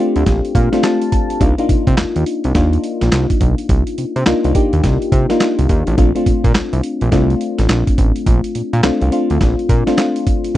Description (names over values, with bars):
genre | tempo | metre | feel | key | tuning
R&B, new jack swing | 105 BPM | 4/4 | swing 63% on 16ths | unclear | A4 = 440 Hz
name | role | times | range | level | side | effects
mellow FM electric piano | accompaniment | 0.0-10.6 s | A3 to A5 | -17 LUFS | left 2 dB | chorus
fat analog bass | bass | 0.2-10.6 s | A1 to C3 | -16 LUFS | right 1 dB | none
dusty soul sampler-style drum kit | drums | 0.2-10.6 s | handclaps, hi-hat, kick drum, snare drum | -16 LUFS | right 1 dB | vintage 12-bit sampler grit
room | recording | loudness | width
little or no reverb | dry, close 1970s-style studio recording | -13 LUFS | side -14 dB against mid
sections
0.0-10.6 A section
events
FM electric piano fill 0.3-1.4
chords
0.0 Bbmaj9; 1.4 Cm11; 6.0 Bbmaj9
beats
0.26 0.84 | 1.41 1.98 2.55 3.12 | 3.69 4.26 4.84 5.41 | 5.98 6.55 7.12 7.69 | 8.26 8.84 9.41 9.98 | 10.55